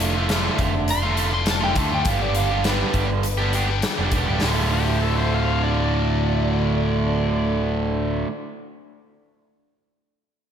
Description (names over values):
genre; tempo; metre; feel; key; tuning
classic rock; 102 BPM; 4/4; straight; D minor; A4 = 440 Hz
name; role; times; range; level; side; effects
distorted electric guitar; riff; 0.0-8.3 s; D2 to G4; -26 LUFS; left 7 dB; overdrive, slapback echo
overdriven electric guitar; riff; 0.0-8.3 s; D2 to G4; -25 LUFS; right 7 dB; none
growling picked electric bass; bass; 0.0-8.2 s; D1 to D2; -24 LUFS; equal; overdrive
big rock drum kit; drums; 0.0-4.6 s; hi-hat, kick drum, snare drum; -26 LUFS; equal; none
electric slide guitar; melody; 0.9-3.8 s; B4 to C6; -26 LUFS; equal; none
overdriven slide guitar; second line; 4.7-7.6 s; G4 to F5; -29 LUFS; left 3 dB; none
room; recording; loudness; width
moderate lush hall reverb, RT60 2.1 s; big arena sound; -19 LUFS; side -8 dB against mid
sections
0.0-4.4 A section; 4.4-6.8 B section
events
electric slide guitar solo 0.0-4.4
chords
0.0 Dm/F; 2.1 G; 4.4 Dm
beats
0.30 0.89 1.48 | 2.06 2.65 3.24 3.83 | 4.42 5.01 5.60 6.18